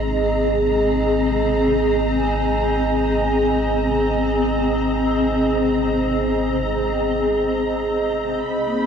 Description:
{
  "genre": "ambient",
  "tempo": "free time",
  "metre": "none",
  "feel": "none",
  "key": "Ab major",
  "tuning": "A4 = 440 Hz",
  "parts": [
    { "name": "granular cloud pad", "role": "sustained chords", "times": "0.0-8.9 s", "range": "C4 to Eb5", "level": "-19 LUFS", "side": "equal", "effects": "built-in reverb" },
    { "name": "vibraphone with soft mallets", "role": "arpeggios", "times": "0.0-8.9 s", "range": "A#3 to Bb5", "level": "-28 LUFS", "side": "equal", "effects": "diffuse ambient delay" },
    { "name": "warm sub bass", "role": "bass", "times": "0.0-8.9 s", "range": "Ab1 to B1", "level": "-27 LUFS", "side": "equal", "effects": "none" },
    { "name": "dark symphonic violin section", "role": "texture", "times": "0.0-8.9 s", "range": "Bb5 to B5", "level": "-30 LUFS", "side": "equal", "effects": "none" }
  ],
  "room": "wet concert hall reverb, RT60 2.1 s",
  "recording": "worn, warbling old tape, cassette tape, warbly pitch drift",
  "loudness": "-17 LUFS",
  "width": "side -7 dB against mid",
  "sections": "0.0-8.9 A section",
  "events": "fade-in on vibraphone 0.0-8.9",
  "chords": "0.0 Abadd9"
}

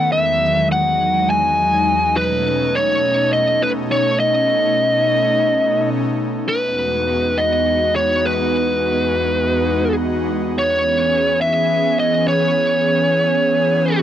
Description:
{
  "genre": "progressive instrumental, progressive",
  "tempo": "207 BPM (eighths)",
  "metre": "7/8",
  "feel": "straight",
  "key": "E major",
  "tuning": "A4 = 440 Hz",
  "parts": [
    { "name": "biting lead guitar", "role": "melody", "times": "0.0-14.0 s", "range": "B4 to G#5", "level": "-16 LUFS", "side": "equal", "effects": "overdrive" },
    { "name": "airy breathy pad", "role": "accompaniment", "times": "0.1-13.9 s", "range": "E2 to G#4", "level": "-19 LUFS", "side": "equal", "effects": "chorus" }
  ],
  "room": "light reverb",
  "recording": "dry, close 1970s-style studio recording",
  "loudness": "-15 LUFS",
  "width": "side -10 dB against mid",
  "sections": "0.0-6.2 A section; 6.2-14.0 B section",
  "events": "none",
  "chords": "0.1 Emaj7; 2.2 B7; 6.2 Emaj9; 10.3 E6"
}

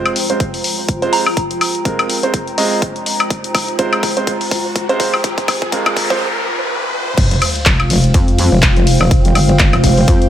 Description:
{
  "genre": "bass house",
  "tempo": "124 BPM",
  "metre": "4/4",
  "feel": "swing 57% on 16ths",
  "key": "F minor",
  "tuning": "A4 = 440 Hz",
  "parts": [
    { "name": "dark analog pad", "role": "sustained chords", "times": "0.0-10.3 s", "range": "Ab3 to Bb5", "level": "-23 LUFS", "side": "equal", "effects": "chorus, sidechain pumping" },
    { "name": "warm baby grand piano", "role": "stabs", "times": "0.0-6.2 s", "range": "Ab3 to Eb5", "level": "-20 LUFS", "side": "right 3 dB", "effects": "sidechain pumping, tape echo" },
    { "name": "riser, noise sweep and sub drop", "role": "sound effects", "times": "2.5-9.1 s", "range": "none", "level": "-24 LUFS", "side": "equal", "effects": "none" },
    { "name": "granular cloud pad", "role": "texture", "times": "0.0-10.3 s", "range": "F4 to G5", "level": "-24 LUFS", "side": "equal", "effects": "built-in reverb, sidechain pumping" },
    { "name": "big-room dance drum kit", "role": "drums", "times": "0.1-10.3 s", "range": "crash cymbal, handclaps, hi-hat, ride cymbal, woodblock", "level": "-18 LUFS", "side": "left 2 dB", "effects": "none" },
    { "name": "electronic kick drum", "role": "drums", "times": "0.4-10.2 s", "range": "none", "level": "-16 LUFS", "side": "equal", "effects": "none" },
    { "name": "soft synth bell", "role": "melody", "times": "1.1-1.3 s", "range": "Bb5", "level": "-21 LUFS", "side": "right 4 dB", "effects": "chorus, phaser, tape echo" },
    { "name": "metallic wobble bass", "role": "bass", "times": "7.2-10.3 s", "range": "F1 to F2", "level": "-13 LUFS", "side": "equal", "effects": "chorus, sidechain pumping" }
  ],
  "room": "light reverb, digital ambience",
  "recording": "high-pass filter",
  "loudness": "-12 LUFS",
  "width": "side -11 dB against mid",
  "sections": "0.0-7.2 A section; 7.2-10.3 B section",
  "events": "build-up 0.0-7.2; drum fill 0.0-6.2; riser 2.5-7.2; noise sweep 5.2-7.2; break 6.2-7.2; drop 7.2-10.3; impact 7.2-9.1",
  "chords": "0.0 Fm"
}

